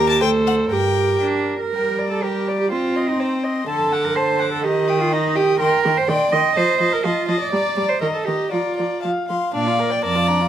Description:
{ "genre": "quick classical-period movement for string quartet", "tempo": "123 BPM", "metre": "2/4", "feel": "rubato", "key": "G minor, Bb major from 5.6 s", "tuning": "A4 = 440 Hz", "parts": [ { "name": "rich violin", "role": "melody", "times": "0.0-10.5 s", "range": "F5 to Eb6", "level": "-28 LUFS", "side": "left 9 dB", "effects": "none" }, { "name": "dark violin", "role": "second line", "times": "0.0-10.5 s", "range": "D4 to A5", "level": "-24 LUFS", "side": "left 3 dB", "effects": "none" }, { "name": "warm viola", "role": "accompaniment", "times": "0.0-10.5 s", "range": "D3 to D5", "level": "-22 LUFS", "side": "right 1 dB", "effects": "none" }, { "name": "rich cello", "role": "bass", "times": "0.0-10.4 s", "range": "D2 to Eb5", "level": "-20 LUFS", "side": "right 4 dB", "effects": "none" } ], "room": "light reverb", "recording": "close, detailed microphones", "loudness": "-17 LUFS", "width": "side -10 dB against mid", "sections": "0.0-1.7 A section; 1.7-9.5 A section", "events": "none", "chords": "0.2 D7(no3); 0.7 Gm; 2.7 Cm; 3.7 D7; 4.6 Eb; 5.6 Cm7/Eb; 6.6 F7; 7.5 Gm; 8.0 Eb; 8.5 Bb/F; 9.5 Bb" }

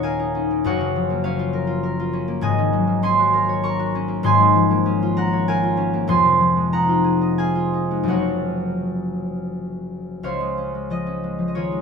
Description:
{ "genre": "classical, solo harp piece", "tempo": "83-102 BPM", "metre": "3/4", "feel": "rubato", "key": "Db major", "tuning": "A4 = 440 Hz", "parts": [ { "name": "concert harp", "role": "solo", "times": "0.0-11.8 s", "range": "Eb1 to Db6", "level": "-18 LUFS", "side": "equal", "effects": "none" } ], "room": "light reverb", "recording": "minimal, uncompressed stereo recording", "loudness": "-18 LUFS", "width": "side -6 dB against mid", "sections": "0.0-10.2 A section; 10.2-11.8 B section", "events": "none", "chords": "0.0 Ebm7; 0.6 Gbmaj7; 2.4 Ab11; 4.3 Bbm9/Ab; 6.1 Fm7; 8.1 Gbmaj7; 10.2 Dbmaj7" }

